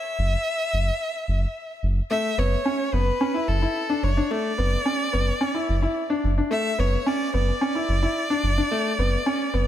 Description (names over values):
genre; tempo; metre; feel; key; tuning
piano and strings electronica; 109 BPM; 4/4; straight; unclear; A4 = 439 Hz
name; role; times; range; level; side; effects
rich violin; melody; 0.0-9.7 s; A4 to E5; -27 LUFS; equal; ping-pong delay
round analog bass; bass; 0.2-9.7 s; F#1; -22 LUFS; equal; none
bright upright piano; riff; 2.1-9.7 s; A3 to E4; -25 LUFS; left 1 dB; ping-pong delay
room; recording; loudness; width
light reverb, studio ambience; none; -21 LUFS; side -11 dB against mid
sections
0.0-9.7 A section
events
none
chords
0.0 F#7(no3); 2.1 Dadd9/F#